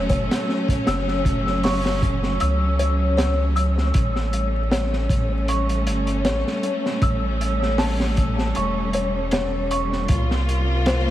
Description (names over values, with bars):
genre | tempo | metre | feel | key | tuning
trip hop | 78 BPM | 4/4 | swing 55% on 16ths | unclear | A4 = 440 Hz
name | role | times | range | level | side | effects
rich chamber string section | sustained chords | 0.0-11.1 s | C3 to F4 | -25 LUFS | equal | none
music box | arpeggios | 0.0-11.1 s | C5 to E6 | -27 LUFS | left 1 dB | diffuse ambient delay
soft dub sub bass | bass | 0.0-11.1 s | E1 to C#2 | -23 LUFS | equal | none
crunchy breakbeat drum kit | drums | 0.1-11.1 s | hi-hat, kick drum, snare drum | -25 LUFS | equal | vintage 12-bit sampler grit
room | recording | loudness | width
moderate huge ambient reverb, RT60 8.1 s | dreamy mix soaked in reverb, vinyl crackle | -19 LUFS | side -13 dB against mid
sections
0.0-11.1 A section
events
none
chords
0.0 F#m; 3.9 A7; 10.1 C7sus4